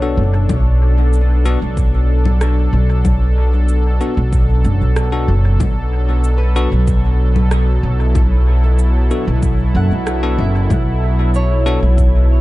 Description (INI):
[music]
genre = ambient dub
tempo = 94 BPM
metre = 4/4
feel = straight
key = B minor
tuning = A4 = 440 Hz
[part]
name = warm analog pad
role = sustained chords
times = 0.0-12.4 s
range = B2 to A4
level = -22 LUFS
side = right 1 dB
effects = chorus
[part]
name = concert harp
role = arpeggios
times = 0.0-12.4 s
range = B3 to F#5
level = -28 LUFS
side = left 3 dB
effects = dub echo
[part]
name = barky tine electric piano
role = stabs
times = 0.0-11.8 s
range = B3 to A4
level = -26 LUFS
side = left 4 dB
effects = dub echo
[part]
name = upright bass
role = bass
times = 0.0-12.4 s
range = F#1 to B1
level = -13 LUFS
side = equal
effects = tube saturation
[part]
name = electronic congas, cabasa and rim click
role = drums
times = 0.5-12.1 s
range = none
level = -25 LUFS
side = left 2 dB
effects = dub echo
[part]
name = electronic kick drum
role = drums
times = 0.5-12.1 s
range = none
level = -18 LUFS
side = equal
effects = none
[sound]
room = digital ambience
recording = echo-heavy mix, nothing above 10.8 kHz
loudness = -12 LUFS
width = side -18 dB against mid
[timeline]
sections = 0.0-12.4 A section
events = none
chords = 0.0 Bm7